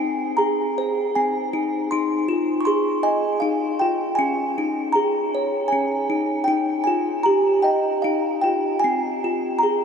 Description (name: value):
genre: children's music, lullaby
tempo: 78 BPM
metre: 3/4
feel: rubato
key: Ab major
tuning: A4 = 440 Hz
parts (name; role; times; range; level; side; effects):
- music box; solo; 0.0-9.8 s; C4 to Db6; -19 LUFS; equal; none
room: wet huge ambient reverb, RT60 7.8 s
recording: in a vast, echoing space, nothing above 11.0 kHz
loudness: -19 LUFS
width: side -6 dB against mid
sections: 0.0-9.8 A section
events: none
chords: 0.0 Ab; 1.9 Fm7; 4.2 Dbsus2; 6.5 Ebadd9; 8.8 Ab6